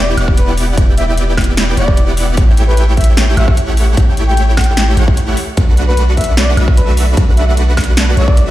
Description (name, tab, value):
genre	future bass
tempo	150 BPM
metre	4/4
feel	half-time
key	E dorian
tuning	A4 = 439 Hz
part	trumpet with bucket mute	melody	0.0-8.5 s	B4 to G5	-22 LUFS	left 2 dB	sidechain pumping, tape echo
part	dense compressed supersaw	riff	0.0-8.5 s	A3 to G5	-18 LUFS	equal	sidechain pumping, dub echo
part	long sustained 808-style bass	bass	0.0-8.5 s	E1 to B1	-13 LUFS	equal	tube saturation, sidechain pumping
part	big-room dance drum kit	drums	0.2-8.5 s	hi-hat, snare drum, woodblock	-18 LUFS	equal	none
part	electronic kick drum	drums	0.3-8.4 s	none	-11 LUFS	equal	none
room	little or no reverb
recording	played on a big sound system in a bare room, large studio reverb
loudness	-9 LUFS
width	side -15 dB against mid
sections	0.0-8.5 A section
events	kick drops out 2.0-2.4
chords	0.0 Em7; 2.4 A7; 5.4 Bm7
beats	0.37 | 0.77 1.17 1.57 1.97 | 2.37 2.77 3.17 3.57 | 3.97 4.37 4.77 5.17 | 5.57 5.97 6.37 6.77 | 7.17 7.57 7.97 8.37